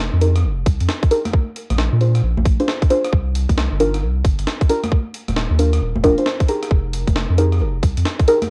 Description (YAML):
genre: UK garage, two-step garage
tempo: 134 BPM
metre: 4/4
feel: swing 63% on 16ths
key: unclear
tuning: A4 = 438 Hz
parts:
  - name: deep mellow chord stab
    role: stabs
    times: 0.0-8.4 s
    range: D4 to C5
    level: -21 LUFS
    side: equal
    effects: analog chorus, cassette tape, analog delay
  - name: soft dub sub bass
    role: bass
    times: 0.0-8.0 s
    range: Eb1 to Bb2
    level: -20 LUFS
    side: equal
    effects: none
  - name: breakbeat sampler-style drum kit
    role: drums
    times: 0.2-8.5 s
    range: congas, hi-hat, rim click, snare drum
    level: -28 LUFS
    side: equal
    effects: cassette tape
  - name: electronic kick drum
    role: drums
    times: 0.7-8.3 s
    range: none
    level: -18 LUFS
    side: equal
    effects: cassette tape
room: light reverb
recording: home recording on cassette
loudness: -18 LUFS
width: mono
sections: 0.0-8.5 A section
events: none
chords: 0.0 Fm11; 1.3 Bb9; 3.1 Cm11; 4.7 Ebmaj9; 6.5 Fm11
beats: 0.44 0.89 | 1.34 1.78 2.23 2.68 | 3.13 3.58 4.02 4.47 | 4.92 5.37 5.81 6.26 | 6.71 7.16 7.61 8.05